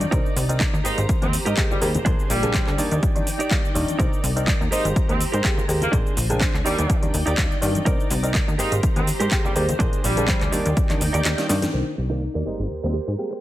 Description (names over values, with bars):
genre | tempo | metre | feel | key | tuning
filtered disco house | 124 BPM | 4/4 | swing 54% on 16ths | unclear | A4 = 438 Hz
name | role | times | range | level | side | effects
muted clav | accompaniment | 0.0-13.4 s | Eb3 to Bb4 | -28 LUFS | equal | phaser, sidechain pumping, low-pass filter
string machine, full ensemble | sustained chords | 0.0-13.4 s | D4 to D6 | -32 LUFS | left 1 dB | ensemble chorus, sidechain pumping, low-pass filter
plucky analog bass | bass | 0.0-13.2 s | Eb1 to Ab2 | -24 LUFS | equal | sidechain pumping, low-pass filter
house drum kit | drums | 0.0-11.7 s | handclaps, hi-hat, shaker, snare drum | -27 LUFS | equal | overdrive, sidechain pumping on hats, sidechain pumping on perc
maracas and congas | percussion | 0.0-11.7 s | none | -32 LUFS | left 2 dB | none
direct-recorded clean electric guitar | riff | 0.1-13.4 s | D4 to Eb5 | -29 LUFS | right 4 dB | sidechain pumping, low-pass filter
electronic kick drum | drums | 0.1-10.9 s | none | -22 LUFS | equal | overdrive
clear horn section | melody | 0.8-12.9 s | G3 to Eb4 | -28 LUFS | right 1 dB | vintage 12-bit sampler grit, sidechain pumping, low-pass filter, digital delay
room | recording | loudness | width
light reverb | none | -19 LUFS | side -14 dB against mid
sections
0.0-11.7 A section; 11.7-13.4 B section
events
kick drops out 11.3-11.7; drum fill 11.3-11.7; band accent 11.6; filter sweep 11.7-13.4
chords
0.1 Cm9; 0.8 Abmaj9; 2.1 Bb9; 2.8 Ebmaj7; 4.0 Cm9; 4.7 Abmaj9; 5.9 Bb9; 6.7 Ebmaj7; 7.9 Cm9; 8.6 Abmaj9; 9.8 Bb9; 10.5 Ebmaj7; 11.7 Cm9; 12.5 Abmaj9